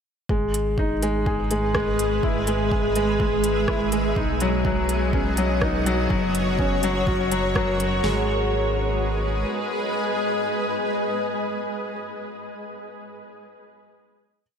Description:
piano and strings electronica; 124 BPM; 4/4; straight; G# minor; A4 = 440 Hz
granular cloud pad; sustained chords; 1.4-12.3 s; G#3 to E5; -26 LUFS; equal; built-in reverb, sidechain pumping
felt-muted upright piano; riff; 0.3-14.4 s; F#3 to G#4; -25 LUFS; left 2 dB; ping-pong delay
round analog bass; bass; 0.3-9.4 s; F#1 to B1; -27 LUFS; equal; tube saturation, sidechain pumping
deep house drum kit; drums; 0.3-8.2 s; hi-hat, kick drum, snare drum; -27 LUFS; equal
organic electronic drum kit; drums; 0.5-7.9 s; hi-hat, rim click; -33 LUFS; right 1 dB
moderate huge ambient reverb, RT60 8.0 s; dreamy mix soaked in reverb; -21 LUFS; side -7 dB against mid
0.3-8.0 drop; 8.0-11.9 final chord
drop 0.3-8.0
0.3 G#m; 2.2 E/G#; 4.2 Badd9; 6.1 F#; 8.0 G#m

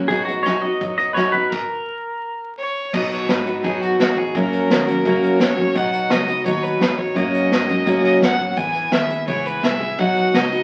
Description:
honky-tonk and classic country; 170 BPM; 4/4; straight; B major; A4 = 440 Hz
picked steel-string acoustic guitar; accompaniment; 0.0-10.6 s; F#2 to G#4; -22 LUFS; equal
pedal steel guitar; second line; 0.1-2.5 s; F#4 to D#5; -24 LUFS; equal
vintage muted fingered electric bass; bass; 0.1-10.6 s; A#1 to B2; -35 LUFS; equal
unplugged drum kit; drums; 0.1-10.6 s; crash cymbal, hi-hat, kick drum, rim click, snare drum; -25 LUFS; equal
clear fiddle; melody; 2.6-10.6 s; F#4 to G#5; -25 LUFS; equal
wet studio reverb, RT60 0.8 s; very old 78 rpm record, vinyl crackle; -19 LUFS; mono
0.0-2.9 A section; 2.9-10.6 B section
pedal steel guitar solo 0.0-2.9; stop 1.5-2.9
0.1 B; 1.5 N.C.; 2.9 B; 4.3 F#; 5.8 B; 7.2 F#; 8.6 E; 10.0 B

